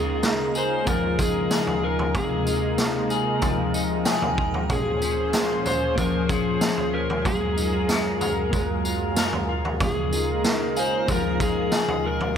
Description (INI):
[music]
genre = dream pop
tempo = 94 BPM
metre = 4/4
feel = straight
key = unclear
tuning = A4 = 443 Hz
[part]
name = overdriven slide guitar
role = melody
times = 0.0-12.4 s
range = Ab4 to C5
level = -27 LUFS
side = left 1 dB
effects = tape echo
[part]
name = semi-hollow electric guitar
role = accompaniment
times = 0.0-12.4 s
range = Bb2 to Ab4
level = -33 LUFS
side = right 4 dB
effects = tremolo, ensemble chorus
[part]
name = lush unison pad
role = sustained chords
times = 0.0-12.4 s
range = Gb2 to C5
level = -29 LUFS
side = right 1 dB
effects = chorus
[part]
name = semi-hollow electric guitar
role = arpeggios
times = 0.0-12.4 s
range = Bb2 to Bb4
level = -28 LUFS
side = left 4 dB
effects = wide subtle chorus, tape echo
[part]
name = raw garage drum kit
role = drums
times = 0.2-12.4 s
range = kick drum, snare drum, tambourine, toms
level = -26 LUFS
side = right 1 dB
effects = none
[part]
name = shimmering bell with halo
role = texture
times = 0.2-4.9, 10.8-12.4 s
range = Eb5 to Bb5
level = -37 LUFS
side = right 4 dB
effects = ensemble chorus, tape echo
[sound]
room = moderate concert hall reverb, RT60 2.4 s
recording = none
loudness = -21 LUFS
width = side -8 dB against mid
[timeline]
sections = 0.0-12.4 A section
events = none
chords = 0.0 Db6; 2.1 Ab69/C; 4.7 Bbm7; 7.3 Gbmaj9; 9.8 Db6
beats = 0.23 0.87 1.51 | 2.15 2.79 3.42 4.06 | 4.70 5.34 5.98 6.62 | 7.25 7.89 8.53 9.17 | 9.81 10.45 11.09 11.72 | 12.36